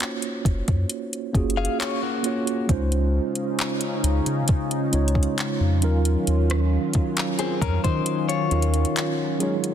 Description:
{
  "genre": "contemporary R&B",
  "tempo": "67 BPM",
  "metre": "4/4",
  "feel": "straight",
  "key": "unclear",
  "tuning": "A4 = 440 Hz",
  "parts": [
    { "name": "mellow tine electric piano", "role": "accompaniment", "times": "0.0-9.7 s", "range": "Gb3 to Db5", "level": "-27 LUFS", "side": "right 4 dB", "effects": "medium stereo tremolo" },
    { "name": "smooth R&B drum kit", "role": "drums", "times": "0.0-9.7 s", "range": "handclaps, hi-hat, kick drum, rim click", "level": "-26 LUFS", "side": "equal", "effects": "none" },
    { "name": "warm sub bass", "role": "bass", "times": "0.5-8.9 s", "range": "Gb1 to Eb3", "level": "-22 LUFS", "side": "equal", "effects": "none" },
    { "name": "direct-recorded clean electric guitar", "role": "arpeggios", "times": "1.6-9.6 s", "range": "Bb3 to F5", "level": "-28 LUFS", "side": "left 9 dB", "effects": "spring reverb, ping-pong delay" },
    { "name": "chorused pulse-width pad", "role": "sustained chords", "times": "2.7-9.7 s", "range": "Db3 to F4", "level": "-28 LUFS", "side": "left 1 dB", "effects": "none" }
  ],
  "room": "light reverb",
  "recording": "dense, heavily limited modern master",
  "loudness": "-21 LUFS",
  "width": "side -9 dB against mid",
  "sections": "0.0-9.7 A section",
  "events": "kick muted 8.1-9.7",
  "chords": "0.0 Gbmaj7; 2.7 Dbmaj9; 5.8 Ebm9"
}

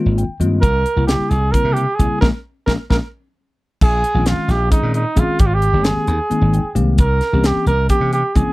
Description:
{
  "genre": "electric jazz fusion",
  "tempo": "264 BPM (eighths)",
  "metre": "7/8",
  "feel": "straight",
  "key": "Bb dorian",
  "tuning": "A4 = 444 Hz",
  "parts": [
    { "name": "bell-like tine electric piano", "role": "accompaniment", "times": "0.0-8.5 s", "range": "Db3 to G5", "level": "-21 LUFS", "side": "left 3 dB", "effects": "analog chorus" },
    { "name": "slap bass", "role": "bass", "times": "0.1-8.5 s", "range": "G1 to C3", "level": "-17 LUFS", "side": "equal", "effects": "none" },
    { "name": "crisp fusion drum kit", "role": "drums", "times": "0.2-8.5 s", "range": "crash cymbal, hi-hat, kick drum, snare drum", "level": "-18 LUFS", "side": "equal", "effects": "none" },
    { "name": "trumpet with bucket mute", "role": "melody", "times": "0.6-8.5 s", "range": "Eb4 to Bb4", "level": "-19 LUFS", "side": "right 2 dB", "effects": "slapback echo" }
  ],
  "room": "little or no reverb",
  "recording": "dry, close 1970s-style studio recording",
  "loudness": "-14 LUFS",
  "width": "side -19 dB against mid",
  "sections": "0.0-3.8 A section; 3.8-8.5 A section",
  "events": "tine electric piano fill 0.0-0.6, 6.3-7.0; band accent 2.2-3.8; drum fill 2.4-3.8",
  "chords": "0.0 Abmaj9; 0.6 C7b9; 2.2 Bbm7; 3.8 Bbm11; 5.4 Abmaj9; 7.0 C7b9"
}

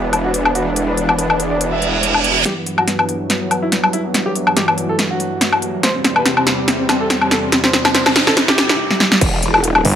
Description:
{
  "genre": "heavy wobble dubstep",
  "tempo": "142 BPM",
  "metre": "4/4",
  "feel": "swing 54% on 16ths, half-time",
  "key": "E minor",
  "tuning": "A4 = 440 Hz",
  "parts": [
    { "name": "dark grand piano", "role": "melody", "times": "0.0-9.1 s", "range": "B3 to E5", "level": "-22 LUFS", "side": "left 1 dB", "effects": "low-pass filter, tape echo" },
    { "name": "supersaw pad", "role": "sustained chords", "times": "0.0-8.8 s", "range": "E2 to D4", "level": "-22 LUFS", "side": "right 1 dB", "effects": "sidechain pumping, low-pass filter" },
    { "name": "growl bass", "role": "bass", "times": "0.0-2.4, 9.2-9.8 s", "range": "E1", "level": "-20 LUFS", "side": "equal", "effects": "chorus, overdrive" },
    { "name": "big-room dance drum kit", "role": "drums", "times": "0.1-9.9 s", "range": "crash cymbal, hi-hat, snare drum, woodblock", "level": "-15 LUFS", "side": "left 1 dB", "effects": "overdrive" },
    { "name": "reverse cymbal, riser and noise sweep", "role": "sound effects", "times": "1.7-9.2 s", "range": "none", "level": "-22 LUFS", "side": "right 3 dB", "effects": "none" },
    { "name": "electronic kick drum", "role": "drums", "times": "9.2-9.3 s", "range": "none", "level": "-18 LUFS", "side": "equal", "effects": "overdrive" },
    { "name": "snarling distorted saw bass", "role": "bass", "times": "9.8-9.9 s", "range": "G1", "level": "-12 LUFS", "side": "equal", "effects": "distortion, overdrive" }
  ],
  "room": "moderate plate reverb, RT60 1.3 s, digital ambience",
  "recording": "none",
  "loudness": "-13 LUFS",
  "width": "side -9 dB against mid",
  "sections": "0.0-2.5 A section; 2.5-9.2 B section",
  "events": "reverse cymbal 1.7-2.5; build-up 2.5-9.2; drum fill 2.5-8.8, 8.9-9.2; riser 2.5-8.8; filter sweep on supersaw synth 2.5-9.2; filter sweep on grand piano 2.5-9.2; noise sweep 7.5-9.2",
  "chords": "0.0 Bm/E; 2.5 Emadd9; 5.8 C/E; 9.2 Em"
}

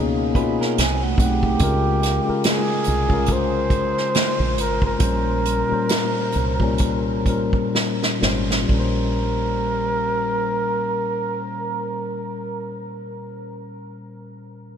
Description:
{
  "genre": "R&B, neo-soul",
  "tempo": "61-72 BPM",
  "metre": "4/4",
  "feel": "swing 58% on 16ths",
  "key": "Bb dorian",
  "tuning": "A4 = 441 Hz",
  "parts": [
    { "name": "bright tine electric piano", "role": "accompaniment", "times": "0.0-14.8 s", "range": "Bb2 to Gb5", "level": "-24 LUFS", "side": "left 4 dB", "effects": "none" },
    { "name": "deep dub fingered electric bass", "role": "bass", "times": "0.0-12.8 s", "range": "Ab1 to C#2", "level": "-25 LUFS", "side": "right 1 dB", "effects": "none" },
    { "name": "unplugged drum kit", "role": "drums", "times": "0.3-9.0 s", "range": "hi-hat, kick drum, snare drum", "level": "-23 LUFS", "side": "right 1 dB", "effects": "none" },
    { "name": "electric guitar through a small old amp", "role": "second line", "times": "0.4-1.6 s", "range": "A3 to B4", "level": "-30 LUFS", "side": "right 10 dB", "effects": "lush chorus" },
    { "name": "mellow flugelhorn", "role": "melody", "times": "1.2-12.8 s", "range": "G4 to C5", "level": "-25 LUFS", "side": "right 2 dB", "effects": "ping-pong delay" }
  ],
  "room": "moderate huge ambient reverb, RT60 8.0 s",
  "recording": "dreamy mix soaked in reverb",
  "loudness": "-18 LUFS",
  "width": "side -8 dB against mid",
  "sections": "0.0-8.7 A section; 8.7-12.6 B section",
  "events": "slowing down 1.6-8.7; drum fill 7.7-8.7",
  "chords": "0.0 Bmaj9#11; 0.8 Cdim7; 1.6 Db6; 5.0 Bbm69"
}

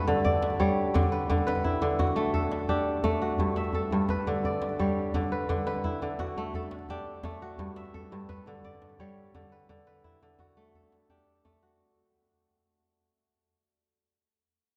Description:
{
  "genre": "west african traditional, West African string and xylophone music",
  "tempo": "114 BPM (dotted quarters)",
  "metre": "12/8",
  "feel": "straight",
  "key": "G lydian",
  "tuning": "A4 = 440 Hz",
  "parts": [
    { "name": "kora", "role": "arpeggios", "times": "0.0-13.4 s", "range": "G2 to E5", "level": "-30 LUFS", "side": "equal", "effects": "none" },
    { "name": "djembe", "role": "percussion", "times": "0.0-11.7 s", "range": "none", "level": "-34 LUFS", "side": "equal", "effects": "none" }
  ],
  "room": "wet cathedral reverb, RT60 6.3 s",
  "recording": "recorded in a church or concert hall",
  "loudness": "-28 LUFS",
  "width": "mono",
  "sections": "0.0-11.8 A section",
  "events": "fade-out 0.0-11.8",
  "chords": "0.0 G; 1.3 D; 3.4 G; 5.5 D; 7.6 G; 9.7 D"
}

